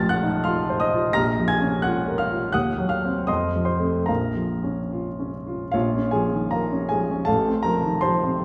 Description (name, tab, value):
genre	classical, romantic character piece for solo piano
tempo	71-87 BPM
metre	2/4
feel	rubato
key	Bb minor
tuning	A4 = 440 Hz
part	clear baby grand piano	solo	0.0-8.4 s	A1 to Bb6	-23 LUFS	equal	none
room	wet scoring stage reverb, RT60 1.6 s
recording	heard from further back in the room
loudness	-23 LUFS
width	mono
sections	0.0-5.7 A section; 5.7-8.4 B section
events	none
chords	0.0 F7/A; 1.1 Bbm; 2.5 Cdim/Eb; 3.3 F7; 4.1 Bbm; 7.3 F/A